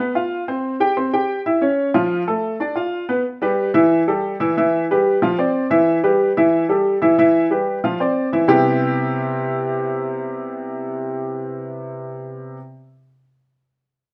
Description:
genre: jazz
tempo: 183 BPM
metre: 4/4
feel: straight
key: C major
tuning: A4 = 441 Hz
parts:
  - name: clear upright piano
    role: solo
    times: 0.0-12.6 s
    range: C3 to G5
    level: -19 LUFS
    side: equal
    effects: none
room: moderate stone room reverb, RT60 0.9 s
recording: band playing live in one room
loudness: -19 LUFS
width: mono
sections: 0.0-3.3 A section; 3.3-8.5 B section; 8.5-11.1 C section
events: none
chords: 0.0 F5; 0.6 C5; 1.3 C#dim; 1.9 F; 2.6 Bdim; 3.3 Em; 3.9 A5; 4.6 Em; 5.2 Dm9; 5.9 Em; 6.5 A5; 7.2 Em; 7.8 Dm9; 8.5 Cmaj7

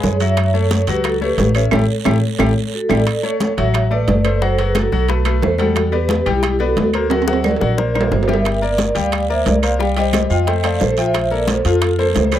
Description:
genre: latin, salsa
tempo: 178 BPM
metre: 4/4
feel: straight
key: D major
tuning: A4 = 445 Hz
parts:
  - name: vibraphone with medium mallets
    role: melody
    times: 0.0-12.4 s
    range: E4 to G5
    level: -20 LUFS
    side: right 2 dB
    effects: none
  - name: bright concert grand piano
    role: accompaniment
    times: 0.0-12.4 s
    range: F3 to G5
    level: -22 LUFS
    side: left 8 dB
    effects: none
  - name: upright bass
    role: bass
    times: 0.0-12.4 s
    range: F#1 to F#2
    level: -19 LUFS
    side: right 1 dB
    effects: none
  - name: bongos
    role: percussion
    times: 0.0-12.3 s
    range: none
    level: -25 LUFS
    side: left 7 dB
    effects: none
  - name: congas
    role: percussion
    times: 0.0-12.4 s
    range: none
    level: -24 LUFS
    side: left 2 dB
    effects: none
  - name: guiro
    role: percussion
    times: 0.0-3.0, 8.5-12.4 s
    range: none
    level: -33 LUFS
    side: right 14 dB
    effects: none
  - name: timbales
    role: percussion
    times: 0.0-12.4 s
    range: none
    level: -23 LUFS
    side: right 7 dB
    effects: none
  - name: claves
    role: percussion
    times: 0.4-12.4 s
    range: none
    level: -27 LUFS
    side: right 16 dB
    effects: none
room: light reverb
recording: dry, close 1970s-style studio recording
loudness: -14 LUFS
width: side -11 dB against mid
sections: 0.0-3.1 A section; 3.1-12.4 A section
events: band accent 1.7-3.1; drum fill 2.4-3.1, 7.1-8.5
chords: 0.4 F#m; 1.7 A; 3.1 Dmaj9; 4.4 F#madd11; 5.1 B5; 5.8 Em9; 7.1 Daug7; 8.5 Gm7; 9.8 Cmadd9; 10.5 F9; 11.1 Bbsus2

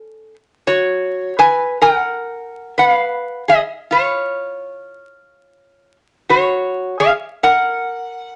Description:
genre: hawaiian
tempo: 85 BPM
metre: 4/4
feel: swing 61% on 8ths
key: F# major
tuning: A4 = 439 Hz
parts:
  - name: metal-body resonator slide guitar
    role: solo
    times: 0.0-8.4 s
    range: C#4 to G#5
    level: -17 LUFS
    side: equal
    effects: none
room: moderate studio reverb, RT60 0.7 s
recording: vinyl crackle, nothing above 10.9 kHz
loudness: -17 LUFS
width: mono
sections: 0.0-8.4 A section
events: none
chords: 0.0 N.C.; 0.6 Bsus2; 3.5 C#; 6.3 F#

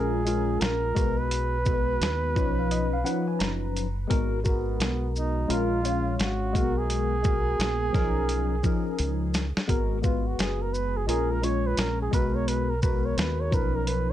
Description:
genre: hip hop, jazz-hop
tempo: 86 BPM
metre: 4/4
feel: swing 64% on 16ths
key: G# dorian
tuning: A4 = 440 Hz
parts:
  - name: breathy flugelhorn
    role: melody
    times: 0.0-14.1 s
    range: B3 to C#5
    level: -31 LUFS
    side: right 3 dB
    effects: tape echo, plate reverb
  - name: tine electric piano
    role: accompaniment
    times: 0.0-14.1 s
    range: E#3 to A#5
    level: -29 LUFS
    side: left 3 dB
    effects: phaser, plate reverb
  - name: deep dub fingered electric bass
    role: bass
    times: 0.0-14.1 s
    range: F#1 to D#2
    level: -29 LUFS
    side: equal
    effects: none
  - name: dusty soul sampler-style drum kit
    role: drums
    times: 0.3-14.1 s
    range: hi-hat, kick drum, shaker, snare drum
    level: -27 LUFS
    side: equal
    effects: vintage 12-bit sampler grit
room: light reverb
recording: dark, warm production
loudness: -24 LUFS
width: side -12 dB against mid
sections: 0.0-14.1 A section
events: tine electric piano fill 2.0-4.1; drum fill 9.0-9.7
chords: 0.0 A#m7; 1.0 G#m7/B; 2.4 Bmaj9#11; 4.1 G#m9; 5.5 A#m7; 6.5 G#m9/B; 7.9 Bmaj9#11; 9.7 G#m9; 11.1 A#m7; 12.1 G#m9/B; 13.5 Bmaj9#11

